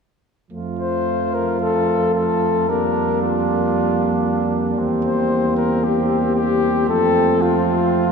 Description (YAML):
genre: classical, brass quintet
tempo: 114 BPM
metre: 4/4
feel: rubato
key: F major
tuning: A4 = 441 Hz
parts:
  - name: mellow trumpet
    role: second line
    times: 0.5-8.1 s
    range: C4 to F4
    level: -25 LUFS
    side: right 7 dB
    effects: none
  - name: mellow French horn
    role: accompaniment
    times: 0.5-8.1 s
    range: A3 to Bb3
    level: -23 LUFS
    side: left 1 dB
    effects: none
  - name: mellow euphonium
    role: accompaniment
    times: 0.5-8.1 s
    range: F3 to G3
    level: -25 LUFS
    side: right 3 dB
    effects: none
  - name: dark bass trombone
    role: bass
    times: 0.5-8.1 s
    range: E2 to F2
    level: -25 LUFS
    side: right 5 dB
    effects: none
  - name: mellow cornet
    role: melody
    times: 0.8-8.1 s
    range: F4 to C5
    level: -20 LUFS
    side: left 6 dB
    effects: none
room: wet cathedral reverb, RT60 4.4 s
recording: minimal, uncompressed stereo recording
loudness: -16 LUFS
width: side -5 dB against mid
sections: 0.5-8.1 A section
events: none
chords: 0.5 F; 2.7 Gm7/F; 4.8 C7/E; 6.9 F